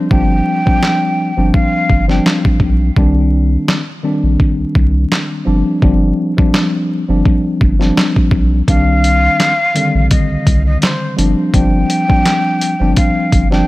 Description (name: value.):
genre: hip hop, boom-bap hip-hop.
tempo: 84 BPM.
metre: 4/4.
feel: swing 54% on 16ths.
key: unclear.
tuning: A4 = 437 Hz.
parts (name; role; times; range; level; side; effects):
tine electric piano; accompaniment; 0.0-13.7 s; D3 to D4; -15 LUFS; left 1 dB; medium stereo tremolo, high-pass filter, low-pass filter.
breathy jazz flute; melody; 0.1-2.2, 8.7-13.7 s; C5 to G5; -17 LUFS; left 1 dB; high-pass filter, low-pass filter, ping-pong delay.
soft dub sub bass; bass; 0.1-13.6 s; G1 to C2; -14 LUFS; equal; none.
dusty soul sampler-style drum kit; drums; 0.1-13.6 s; handclaps, hi-hat, kick drum, snare drum; -14 LUFS; equal; overdrive.
room: little or no reverb.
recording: vinyl crackle.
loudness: -11 LUFS.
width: side -18 dB against mid.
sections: 0.0-13.7 A section.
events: break 0.0-8.7.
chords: 0.0 G7sus4; 3.0 Cmadd9; 5.5 G7sus4; 8.7 Cmadd9; 11.2 G7sus4.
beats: | 0.11 0.82 1.54 2.25 | 2.97 3.68 4.39 5.11 | 5.82 6.54 7.25 7.97 | 8.68 9.39 10.11 10.82 | 11.54 12.25 12.97.